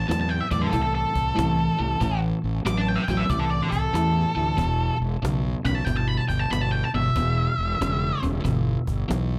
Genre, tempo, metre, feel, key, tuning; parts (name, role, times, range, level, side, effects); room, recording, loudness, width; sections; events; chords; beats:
blues rock power trio and southern rock; 93 BPM; 4/4; swing 66% on 8ths; E minor; A4 = 440 Hz
octave-fuzz lead guitar; melody; 0.0-8.2 s; A4 to D6; -30 LUFS; equal; distortion
biting overdriven guitar; riff; 0.0-9.4 s; E2 to F#3; -28 LUFS; equal
fuzz fingered electric bass; bass; 0.0-9.4 s; E1 to E2; -29 LUFS; equal; overdrive
cajon; drums; 0.1-9.3 s; -33 LUFS; equal
moderate club reverb, RT60 0.6 s; -24 LUFS; mono
0.0-9.4 A section
0.0 Am; 4.6 Em
0.09 0.73 1.37 | 2.01 2.65 3.30 3.94 | 4.58 5.23 5.87 6.52 | 7.16 7.81 8.45 9.10